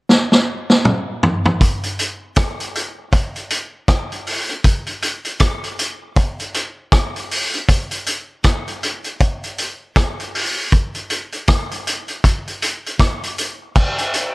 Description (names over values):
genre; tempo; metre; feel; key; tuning
reggae; 79 BPM; 4/4; swing 59% on 16ths; none; none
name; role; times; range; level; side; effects
vintage drum kit; drums; 0.1-14.3 s; crash cymbal, hi-hat, kick drum, rim click, snare drum, toms; -16 LUFS; equal; none
room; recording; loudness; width
light reverb; lossy compression artefacts; -17 LUFS; side -24 dB against mid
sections
0.0-1.6 A section; 1.6-13.8 B section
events
drum fill 0.1-1.6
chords
none